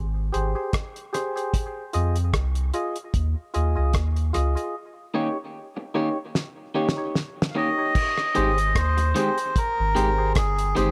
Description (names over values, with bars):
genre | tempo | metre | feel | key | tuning
dub reggae | 75 BPM | 4/4 | swing 55% on 16ths | Ab major | A4 = 440 Hz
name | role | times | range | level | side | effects
soft dub sub bass | bass | 0.0-10.9 s | G1 to F2 | -26 LUFS | equal | none
percussive organ stab | stabs | 0.3-10.9 s | Eb4 to Eb5 | -32 LUFS | equal | chorus, tape echo
cloth-damped thuddy drum kit | drums | 0.3-10.9 s | crash cymbal, hi-hat, kick drum, rim click, snare drum | -28 LUFS | equal | none
electric guitar through a small old amp | accompaniment | 5.1-10.9 s | Eb3 to G4 | -31 LUFS | equal | tape echo
melodica | melody | 7.5-10.9 s | Ab4 to F5 | -26 LUFS | equal | tape echo
room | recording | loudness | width
light reverb, small room ambience | none | -24 LUFS | mono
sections
0.0-8.0 A section; 8.0-10.9 B section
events
break 0.0-4.7, 4.7-8.0; drum fill 6.3-8.0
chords
0.0 Abmaj7; 1.5 Fm7; 4.7 Eb7; 8.0 Abmaj7